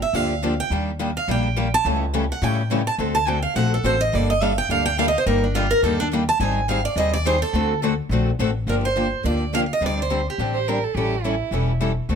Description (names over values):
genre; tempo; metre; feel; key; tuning
acoustic string swing (jazz manouche); 211 BPM; 4/4; swing 56% on 8ths; G minor; A4 = 440 Hz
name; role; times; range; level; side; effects
picked steel-string acoustic guitar; melody; 0.0-10.8 s; D4 to A5; -22 LUFS; right 3 dB; slapback echo
upright bass; bass; 0.0-12.2 s; E1 to A2; -24 LUFS; left 1 dB; none
picked steel-string acoustic guitar; accompaniment; 0.1-12.2 s; C#3 to A4; -26 LUFS; left 7 dB; none
picked steel-string acoustic guitar; accompaniment; 0.1-12.2 s; C#3 to C#5; -29 LUFS; right 8 dB; none
warm violin; second line; 10.5-11.8 s; E4 to C5; -26 LUFS; right 8 dB; none
room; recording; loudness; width
light reverb; close, detailed microphones; -19 LUFS; side -7 dB against mid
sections
0.0-8.7 A section; 8.7-12.2 B section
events
steel-string acoustic guitar solo 0.0-8.7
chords
0.0 Gm7; 0.7 Ebmaj7; 1.9 A7/C#; 3.0 D7; 4.1 Gmadd9; 5.3 Ebmaj7/G; 6.4 Abmaj7; 7.5 D7; 8.7 Gm7; 9.8 D7sus4; 10.9 A7